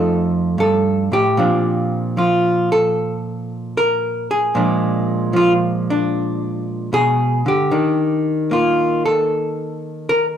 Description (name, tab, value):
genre	solo jazz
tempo	76 BPM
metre	4/4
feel	swing 67% on 8ths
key	Bb major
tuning	A4 = 440 Hz
part	archtop guitar, miked and amplified	solo	0.0-10.4 s	F2 to Bb4	-16 LUFS	equal	none
room	moderate studio reverb, RT60 0.8 s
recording	dark, warm production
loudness	-16 LUFS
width	side -9 dB against mid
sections	0.0-1.4 A section; 1.4-10.4 A section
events	none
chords	0.0 F9; 1.4 Bbmaj9; 4.5 Bb7b9; 7.7 Ebmaj7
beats	0.59 | 1.38 2.17 2.96 3.76 | 4.55 5.34 6.14 6.93 | 7.72 8.52 9.31 10.11